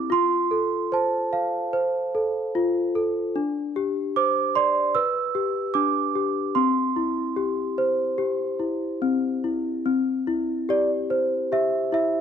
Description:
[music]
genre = children's music, lullaby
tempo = 74 BPM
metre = 4/4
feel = rubato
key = C major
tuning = A4 = 439 Hz
[part]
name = celesta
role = solo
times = 0.0-12.2 s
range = C4 to E6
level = -22 LUFS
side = equal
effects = none
[sound]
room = light reverb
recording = close, detailed microphones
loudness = -22 LUFS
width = side -8 dB against mid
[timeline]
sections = 0.0-9.9 A section; 9.9-12.2 A section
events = none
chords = 0.1 F; 3.4 Gsus4; 5.0 G; 6.6 C

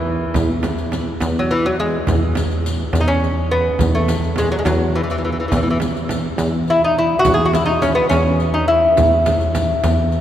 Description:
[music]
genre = Persian modal ensemble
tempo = 70 BPM (dotted quarters)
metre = 6/8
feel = straight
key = E dastgah mahur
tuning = A4 = 440 Hz
[part]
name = lute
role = melody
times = 0.0-9.9 s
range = E3 to G#4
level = -18 LUFS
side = left 1 dB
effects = none
[part]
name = plucky analog bass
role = bass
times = 0.0-10.2 s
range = E2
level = -19 LUFS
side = equal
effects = none
[part]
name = frame drum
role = percussion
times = 0.3-10.0 s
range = none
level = -25 LUFS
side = right 2 dB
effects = none
[part]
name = riq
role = percussion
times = 0.4-10.2 s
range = none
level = -32 LUFS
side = left 3 dB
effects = none
[sound]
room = wet cathedral reverb, RT60 5.5 s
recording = recorded in a church or concert hall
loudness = -15 LUFS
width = side -11 dB against mid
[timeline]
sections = 0.0-10.2 A section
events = none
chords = none

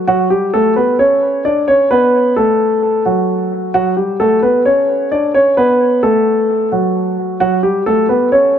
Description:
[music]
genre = hip hop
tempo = 131 BPM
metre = 4/4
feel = half-time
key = B minor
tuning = A4 = 440 Hz
[part]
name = dark concert grand piano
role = solo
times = 0.0-8.6 s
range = F#3 to D5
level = -11 LUFS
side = equal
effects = analog delay
[sound]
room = moderate spring reverb, RT60 2.3 s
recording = echo-heavy mix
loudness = -11 LUFS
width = side -9 dB against mid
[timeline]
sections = 0.1-8.6 A section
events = none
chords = 0.1 Bm7; 5.6 F#madd11; 7.4 B7(no3)

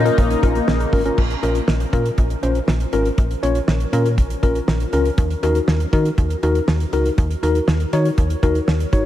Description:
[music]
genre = synth-pop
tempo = 120 BPM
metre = 4/4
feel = straight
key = Bb minor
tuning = A4 = 441 Hz
[part]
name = phased analog pad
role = sustained chords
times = 0.0-1.2 s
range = Db3 to Eb4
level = -26 LUFS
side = left 3 dB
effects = phaser, chorus
[part]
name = soft round pluck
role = arpeggios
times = 0.0-1.2 s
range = Bb3 to Bb4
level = -31 LUFS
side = right 2 dB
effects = none
[part]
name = slap-like FM bass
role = bass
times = 0.0-9.1 s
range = Ab1 to Eb3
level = -20 LUFS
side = equal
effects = none
[part]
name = mellow tine electric piano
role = accompaniment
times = 0.1-9.1 s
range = Db4 to Db5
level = -21 LUFS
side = left 2 dB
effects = fast stereo tremolo
[part]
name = damped 70s drum kit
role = drums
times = 0.1-9.0 s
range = crash cymbal, hi-hat, kick drum, snare drum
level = -21 LUFS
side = equal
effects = none
[sound]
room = moderate huge ambient reverb, RT60 7.3 s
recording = dreamy mix soaked in reverb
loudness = -16 LUFS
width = side -12 dB against mid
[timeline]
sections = 0.0-1.2 A section; 1.2-9.1 B section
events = none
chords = 0.0 Bbm; 5.2 Ebm

